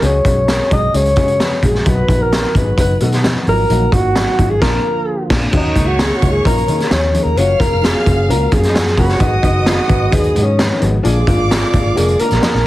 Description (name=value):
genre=uptempo 1960s-style soul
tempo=131 BPM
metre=4/4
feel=straight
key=Eb minor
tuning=A4 = 440 Hz
part: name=breathy alto saxophone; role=melody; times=0.0-12.7 s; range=Db4 to Eb5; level=-17 LUFS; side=equal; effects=none
part: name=dark upright piano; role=accompaniment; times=0.0-12.6 s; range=F3 to Cb5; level=-22 LUFS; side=left 4 dB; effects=none
part: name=percussive tonewheel organ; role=sustained chords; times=0.0-12.7 s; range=D3 to Ab4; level=-27 LUFS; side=right 1 dB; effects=none
part: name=vintage muted fingered electric bass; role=bass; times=0.0-12.6 s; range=F1 to Eb3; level=-17 LUFS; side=equal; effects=none
part: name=raw garage drum kit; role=drums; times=0.0-12.6 s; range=crash cymbal, hi-hat, kick drum, snare drum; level=-16 LUFS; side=equal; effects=none
part: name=congas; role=percussion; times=0.3-12.5 s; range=none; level=-27 LUFS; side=right 1 dB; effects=none
part: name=warm studio violin section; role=second line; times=5.5-12.6 s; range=Eb4 to F6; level=-24 LUFS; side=right 1 dB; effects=none
room=moderate club reverb, RT60 0.7 s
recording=heavily compressed radio sound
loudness=-12 LUFS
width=side -16 dB against mid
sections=0.0-5.5 A section; 5.5-12.7 B section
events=band accent 4.6-5.5; alto saxophone solo 5.5-12.7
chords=0.0 Gbsus2; 1.9 B; 3.7 Ebm; 4.6 Bb; 5.5 Ebm7; 7.4 Gbmaj7; 9.2 Abm7; 11.0 Bb7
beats=| 0.02 0.48 0.94 1.40 | 1.86 2.32 2.77 3.23 | 3.69 4.15 4.61 5.07 | 5.53 5.99 6.45 6.91 | 7.37 7.83 8.29 8.75 | 9.21 9.67 10.13 10.59 | 11.05 11.51 11.97 12.43